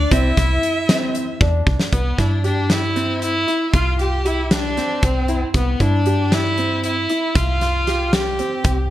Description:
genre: progressive instrumental, band music in an uneven meter.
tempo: 232 BPM (eighths).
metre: 7/8.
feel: straight.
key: C major.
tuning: A4 = 436 Hz.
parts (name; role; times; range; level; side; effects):
rich violin; melody; 0.0-8.9 s; B3 to E5; -23 LUFS; equal; none.
bright alto saxophone; second line; 0.0-8.9 s; B3 to G4; -25 LUFS; left 2 dB; none.
woody FM bass; bass; 0.0-8.9 s; C2 to G2; -20 LUFS; equal; none.
warm grand piano; arpeggios; 0.1-8.7 s; C4 to G4; -25 LUFS; right 1 dB; analog chorus.
big rock drum kit; drums; 0.1-8.8 s; hi-hat, kick drum, snare drum; -21 LUFS; equal; none.
room: moderate plate reverb, RT60 1.4 s.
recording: bright 1980s-style digital production.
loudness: -16 LUFS.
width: side -14 dB against mid.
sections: 0.0-1.9 A section; 1.9-8.9 B section.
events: drum fill 1.4-1.9.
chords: 0.1 Cadd9; 1.9 C; 3.7 Fsus2/C; 5.5 C; 7.4 Fsus2/C.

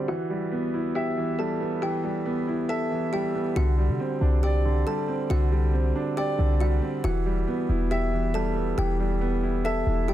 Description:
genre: hip hop, trap.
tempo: 138 BPM.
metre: 4/4.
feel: half-time.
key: E minor.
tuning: A4 = 441 Hz.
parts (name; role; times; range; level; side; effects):
kalimba; melody; 0.0-10.1 s; F#4 to A5; -30 LUFS; equal; low-pass filter.
dark concert grand piano; accompaniment; 0.0-10.1 s; D3 to E5; -27 LUFS; right 1 dB; low-pass filter.
warm 808-style bass; bass; 3.6-10.1 s; E1 to C3; -24 LUFS; equal; none.
room: small room ambience.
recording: none.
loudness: -23 LUFS.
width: side -12 dB against mid.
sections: 0.0-3.6 A section; 3.6-10.1 B section.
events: filter sweep 0.0-3.6.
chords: 0.1 Em; 3.6 Csus2; 7.0 Em.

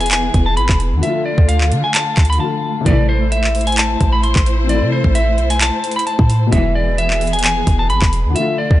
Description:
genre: hip hop, trap.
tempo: 131 BPM.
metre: 4/4.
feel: half-time.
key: A harmonic minor.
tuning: A4 = 443 Hz.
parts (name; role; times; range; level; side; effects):
clean electric guitar; melody; 0.0-8.8 s; C5 to C6; -19 LUFS; equal; spring reverb, low-pass filter.
felt-muted upright piano; accompaniment; 0.0-8.8 s; B2 to F4; -24 LUFS; left 6 dB; low-pass filter.
dark symphonic string section; sustained chords; 0.0-8.8 s; D3 to C5; -24 LUFS; equal; none.
clean 808-style bass; bass; 0.0-8.8 s; E1 to D3; -16 LUFS; equal; none.
trap drum kit; drums; 0.0-8.8 s; handclaps, hi-hat, kick drum; -16 LUFS; equal; none.
rich symphonic string section; stabs; 2.9-3.3, 6.5-7.0 s; B1 to E3; -23 LUFS; right 2 dB; none.
room: studio ambience.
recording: dark, warm production, nothing above 10.8 kHz.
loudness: -13 LUFS.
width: side -14 dB against mid.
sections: 0.0-8.8 A section.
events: break 2.4-2.9.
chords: 0.0 E; 1.0 Dm; 2.9 Am; 6.5 E.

